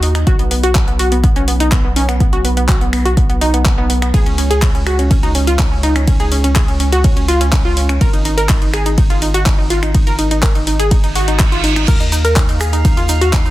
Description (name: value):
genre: progressive house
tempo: 124 BPM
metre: 4/4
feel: straight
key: unclear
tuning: A4 = 439 Hz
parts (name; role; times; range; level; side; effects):
- wide unison pluck; arpeggios; 0.0-13.5 s; B3 to Bb4; -18 LUFS; equal; sidechain pumping, digital delay
- round analog bass; bass; 0.0-13.5 s; Ab1 to Eb2; -17 LUFS; equal; sidechain pumping
- deep house drum kit; drums; 0.0-13.4 s; crash cymbal, finger snaps, handclaps, hi-hat, ride cymbal; -21 LUFS; left 1 dB; sidechain pumping on hats, sidechain pumping on cymbals, soft clipping on snare
- electronic kick drum; drums; 0.3-13.4 s; none; -14 LUFS; equal; none
- reverse cymbal; sound effects; 11.1-11.9 s; none; -22 LUFS; right 7 dB; none
- tube shaker; percussion; 11.9-13.5 s; none; -28 LUFS; right 2 dB; none
- drifting glass-harmonics texture; texture; 12.1-13.5 s; F5; -27 LUFS; right 6 dB; chorus, built-in reverb, sidechain pumping
room: little or no reverb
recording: dense, heavily limited modern master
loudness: -11 LUFS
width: side -16 dB against mid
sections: 0.0-13.5 A section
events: reverse cymbal 11.1-11.9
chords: 0.3 B5; 4.1 N.C.; 8.0 Ab5; 11.9 Ebsus2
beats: | 0.27 0.75 1.24 1.72 | 2.20 2.69 3.17 3.65 | 4.14 4.62 5.11 5.59 | 6.07 6.56 7.04 7.53 | 8.01 8.49 8.98 9.46 | 9.95 10.43 10.91 11.40 | 11.88 12.37 12.85 13.33